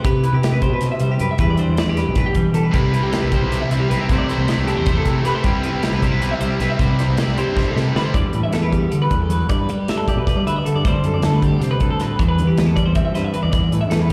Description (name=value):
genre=math rock and midwest emo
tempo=311 BPM (eighths)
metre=7/8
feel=straight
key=C major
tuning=A4 = 440 Hz
part: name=clean electric guitar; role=accompaniment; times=0.0-14.1 s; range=A2 to E5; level=-24 LUFS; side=equal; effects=none
part: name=twelve-string electric guitar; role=arpeggios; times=0.0-14.1 s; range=G4 to E5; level=-27 LUFS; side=equal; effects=spring reverb, digital delay, slapback echo
part: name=fuzz fingered electric bass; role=bass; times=0.0-14.1 s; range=B1 to G3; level=-23 LUFS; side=equal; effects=overdrive
part: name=modern studio drum kit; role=drums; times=0.0-14.1 s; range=hi-hat, kick drum, snare drum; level=-24 LUFS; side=equal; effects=none
part: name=cranked stack guitar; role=riff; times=2.7-8.1 s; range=C3 to E4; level=-27 LUFS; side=equal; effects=overdrive, slapback echo
room=small room ambience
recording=live gig heard through the venue's PA, recital hall reverb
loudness=-18 LUFS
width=mono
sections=0.0-8.1 A section; 8.1-14.1 B section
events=drum fill 7.6-8.1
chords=0.0 Cmaj7; 1.4 Em7; 2.7 Cmaj7; 4.1 Am7/C; 5.4 Cmaj7; 8.1 Em7; 9.5 G69; 10.8 D7sus4; 12.2 Cmaj7/E; 13.5 Em7